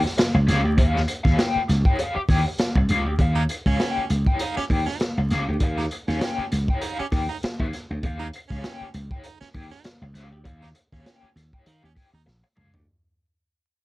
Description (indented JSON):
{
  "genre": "funk",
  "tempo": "99 BPM",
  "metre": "4/4",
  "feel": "swing 56% on 16ths",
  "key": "Eb mixolydian",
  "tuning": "A4 = 440 Hz",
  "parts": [
    { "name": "raw garage guitar", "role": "accompaniment", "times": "0.0-12.8 s", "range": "G4 to G5", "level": "-28 LUFS", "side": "left 2 dB", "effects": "wah, overdrive, tremolo" },
    { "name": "slap bass", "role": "bass", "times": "0.0-12.9 s", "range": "Bb1 to Eb3", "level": "-23 LUFS", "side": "equal", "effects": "none" },
    { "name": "crunchy breakbeat drum kit", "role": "drums", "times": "0.1-12.9 s", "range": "hi-hat, kick drum, snare drum, toms", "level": "-24 LUFS", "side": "equal", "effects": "none" },
    { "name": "edgy baritone saxophone", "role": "second line", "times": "3.4-12.2 s", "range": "Db4 to Eb4", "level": "-33 LUFS", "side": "right 6 dB", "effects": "none" }
  ],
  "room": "little or no reverb",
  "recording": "dark, warm production, vinyl crackle",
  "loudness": "-20 LUFS",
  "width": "side -18 dB against mid",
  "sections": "0.0-12.9 A section",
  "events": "fade-out 0.0-12.9; drum fill 12.3-12.9",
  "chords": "0.0 Eb9"
}